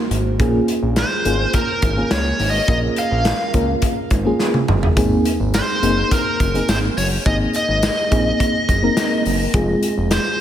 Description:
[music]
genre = 1980s-style pop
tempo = 105 BPM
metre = 4/4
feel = straight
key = unclear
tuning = A4 = 439 Hz
[part]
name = FM electric piano with tremolo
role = accompaniment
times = 0.0-10.4 s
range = Ab3 to C5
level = -21 LUFS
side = equal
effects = phaser
[part]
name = fat analog bass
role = bass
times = 0.1-10.2 s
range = F1 to Db2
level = -21 LUFS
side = equal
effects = none
[part]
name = modern studio drum kit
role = drums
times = 0.1-10.2 s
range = hi-hat, kick drum, snare drum, toms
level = -21 LUFS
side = equal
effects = none
[part]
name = biting lead guitar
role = melody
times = 1.0-10.4 s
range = Bb4 to F5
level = -21 LUFS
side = equal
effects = overdrive, diffuse ambient delay
[part]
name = tambourine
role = percussion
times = 5.0-10.2 s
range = none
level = -38 LUFS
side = left 5 dB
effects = none
[sound]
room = wet lush hall reverb, RT60 2.3 s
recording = dreamy mix soaked in reverb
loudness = -15 LUFS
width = side -10 dB against mid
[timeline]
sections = 0.0-10.4 A section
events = drum fill 4.4-5.0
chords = 0.4 Bbm7; 5.0 Abadd9; 9.5 Fm

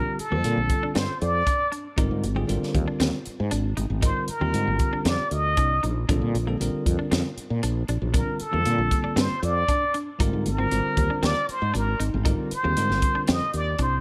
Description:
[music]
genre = electric jazz fusion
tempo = 117 BPM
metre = 4/4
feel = straight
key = unclear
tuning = A4 = 437 Hz
[part]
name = trumpet with plunger mute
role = melody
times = 0.0-14.0 s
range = A4 to Eb5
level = -29 LUFS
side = equal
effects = none
[part]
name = bell-like tine electric piano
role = accompaniment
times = 0.0-13.4 s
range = D3 to C5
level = -33 LUFS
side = equal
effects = none
[part]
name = semi-hollow electric guitar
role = stabs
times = 0.0-13.9 s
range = Bb3 to Eb4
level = -38 LUFS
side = equal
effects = analog chorus
[part]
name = woody fretless electric bass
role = bass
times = 0.2-14.0 s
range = Ab1 to Bb2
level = -28 LUFS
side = equal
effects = subtle chorus
[part]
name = crisp fusion drum kit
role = drums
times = 0.2-13.9 s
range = hi-hat, kick drum, snare drum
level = -29 LUFS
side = equal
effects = none
[sound]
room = light reverb, studio ambience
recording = none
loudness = -24 LUFS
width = mono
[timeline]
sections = 0.0-14.0 A section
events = muted trumpet solo 0.0-14.0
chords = 0.0 Bbmaj9; 2.0 Abmaj9; 6.1 Bbadd9; 10.2 Abmaj9

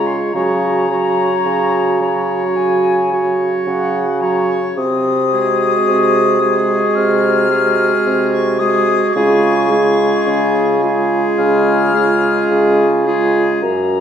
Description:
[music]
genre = classical, slow romantic movement for wind quintet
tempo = 54 BPM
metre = 4/4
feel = rubato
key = Db major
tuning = A4 = 440 Hz
[part]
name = silver concert flute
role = melody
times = 0.0-14.0 s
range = Gb5 to F6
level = -20 LUFS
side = left 6 dB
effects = none
[part]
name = clear oboe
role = second line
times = 0.0-13.6 s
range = Ab4 to Db5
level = -24 LUFS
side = left 3 dB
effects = none
[part]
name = warm French horn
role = accompaniment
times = 0.0-13.6 s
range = Gb3 to Ab3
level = -19 LUFS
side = left 1 dB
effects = none
[part]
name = warm clarinet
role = accompaniment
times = 0.0-13.6 s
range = F4 to Gb4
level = -18 LUFS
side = right 4 dB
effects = none
[part]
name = mellow bassoon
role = bass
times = 0.0-14.0 s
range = Gb2 to Db3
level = -17 LUFS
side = right 1 dB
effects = none
[sound]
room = wet recital hall reverb, RT60 1.5 s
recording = heard from further back in the room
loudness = -12 LUFS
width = side -8 dB against mid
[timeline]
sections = 0.0-14.0 A section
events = none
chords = 0.3 Gb/Db; 4.8 Ab7/C; 9.2 Db

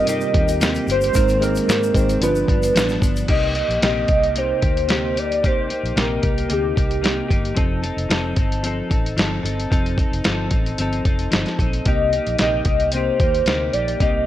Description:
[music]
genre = indie pop, bedroom pop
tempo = 112 BPM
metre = 4/4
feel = straight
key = C dorian from 3.3 s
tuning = A4 = 440 Hz
[part]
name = warbly nostalgic lead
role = melody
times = 0.0-7.3, 11.9-14.3 s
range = G4 to Eb5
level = -21 LUFS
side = equal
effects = analog chorus, slapback echo
[part]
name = clean electric guitar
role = accompaniment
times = 0.0-14.3 s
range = G2 to A4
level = -25 LUFS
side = left 2 dB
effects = analog chorus, warbly pitch drift
[part]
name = tine electric piano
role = accompaniment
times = 0.0-3.3 s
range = G3 to B4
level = -23 LUFS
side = right 3 dB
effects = overdrive, fast stereo tremolo, cassette tape
[part]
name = vintage muted fingered electric bass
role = bass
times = 0.0-14.3 s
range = F1 to Ab2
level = -25 LUFS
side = equal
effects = none
[part]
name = lo-fi sampler-style drum kit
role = drums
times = 0.1-14.1 s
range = crash cymbal, hi-hat, kick drum, snare drum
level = -21 LUFS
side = equal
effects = none
[part]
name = tube shaker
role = percussion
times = 0.1-3.3 s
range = none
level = -37 LUFS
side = left 5 dB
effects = none
[sound]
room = light reverb, digital ambience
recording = none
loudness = -17 LUFS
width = side -12 dB against mid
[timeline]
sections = 0.0-3.3 A section; 3.3-14.3 B section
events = none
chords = 0.0 Cm7; 1.2 Abadd9; 2.2 G7; 3.3 Cm7; 7.6 F7; 11.9 Cm7

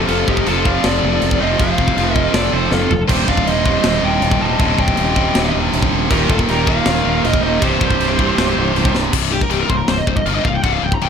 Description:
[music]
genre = heavy metal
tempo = 159 BPM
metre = 4/4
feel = straight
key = C dorian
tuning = A4 = 440 Hz
[part]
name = scooped high-gain guitar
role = riff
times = 0.0-11.1 s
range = C2 to F3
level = -20 LUFS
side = left 16 dB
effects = distortion
[part]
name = tight distorted guitar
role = riff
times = 0.0-9.1 s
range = C2 to F3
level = -20 LUFS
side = right 14 dB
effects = distortion
[part]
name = fuzz fingered electric bass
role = bass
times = 0.0-11.1 s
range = C1 to G1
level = -20 LUFS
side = equal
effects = overdrive
[part]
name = high-gain lead guitar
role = melody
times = 0.1-11.1 s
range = G4 to Bb5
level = -20 LUFS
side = left 1 dB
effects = distortion
[part]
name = high-gain lead guitar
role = second line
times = 0.1-8.9 s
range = Eb4 to Eb5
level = -27 LUFS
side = right 3 dB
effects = distortion
[part]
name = tight metal drum kit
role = drums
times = 0.1-11.1 s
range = crash cymbal, kick drum, snare drum, toms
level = -20 LUFS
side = equal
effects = none
[sound]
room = small room reverb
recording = none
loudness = -13 LUFS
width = side -7 dB against mid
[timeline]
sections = 0.0-9.1 A section; 9.1-11.1 B section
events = drum fill 2.7-3.1, 8.9; lead electric guitar solo 9.1-11.1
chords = 0.0 F; 3.1 Cm/Eb; 6.1 Eb5; 7.6 C5

